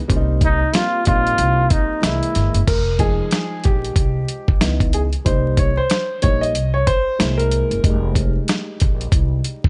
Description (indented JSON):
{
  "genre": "hip hop, jazz-hop",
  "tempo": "93 BPM",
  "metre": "4/4",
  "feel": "swing 59% on 16ths",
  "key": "F minor",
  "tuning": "A4 = 438 Hz",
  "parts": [
    { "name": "dark concert grand piano", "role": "accompaniment", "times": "0.1-9.7 s", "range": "E3 to D#5", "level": "-25 LUFS", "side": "equal", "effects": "none" },
    { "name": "upright bass", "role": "bass", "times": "0.1-9.4 s", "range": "F1 to Db2", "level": "-23 LUFS", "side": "equal", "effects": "none" },
    { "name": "dusty soul sampler-style drum kit", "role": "drums", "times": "0.1-9.7 s", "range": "crash cymbal, hi-hat, kick drum, snare drum", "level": "-21 LUFS", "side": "equal", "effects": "overdrive" },
    { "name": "clear trombone", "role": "melody", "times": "0.4-2.7 s", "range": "Eb4 to F4", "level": "-22 LUFS", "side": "equal", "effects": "slapback echo" }
  ],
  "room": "small room ambience",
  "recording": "vinyl crackle, nothing above 10.6 kHz",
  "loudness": "-18 LUFS",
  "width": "mono",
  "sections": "0.0-2.7 A section; 2.7-9.7 A section",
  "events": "trombone solo 0.0-2.7; grand piano solo 2.7-9.7",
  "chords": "0.1 Cm7; 2.0 C7alt; 2.7 Fm7; 4.6 Dbm7; 5.3 Cm7; 7.2 Caug7; 7.8 Fm7",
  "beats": "| 0.10 0.74 1.39 2.03 | 2.68 3.32 3.97 4.61 | 5.26 5.90 6.55 7.19 | 7.84 8.48 9.13"
}